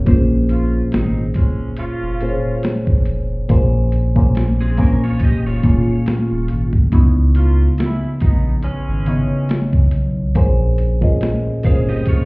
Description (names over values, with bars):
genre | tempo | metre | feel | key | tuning
R&B, neo-soul | 70 BPM | 4/4 | swing 54% on 16ths | unclear | A4 = 440 Hz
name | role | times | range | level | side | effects
reed electric piano | accompaniment | 0.0-12.3 s | Bb2 to Eb5 | -18 LUFS | equal | phaser
warm sub bass | bass | 0.0-12.2 s | Eb1 to Db2 | -17 LUFS | equal | none
boom bap sampler-style drum kit | drums | 0.1-12.3 s | hi-hat, kick drum, snare drum | -16 LUFS | equal | none
mellow horn section | stabs | 0.5-9.7 s | Fb3 to F4 | -28 LUFS | right 2 dB | none
electric guitar at the edge of break-up | second line | 4.6-12.3 s | C4 to F5 | -27 LUFS | right 3 dB | ensemble chorus
room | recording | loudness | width
digital ambience | heard muffled through a wall, club reverb, EQ | -14 LUFS | side -26 dB against mid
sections
0.1-12.3 A section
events
none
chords
0.1 Bbm9; 6.9 Dbm9; 10.4 Bbm9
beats
| 0.07 0.93 1.78 2.64 | 3.50 4.36 5.21 6.07 | 6.93 7.78 8.64 9.50 | 10.36 11.21 12.07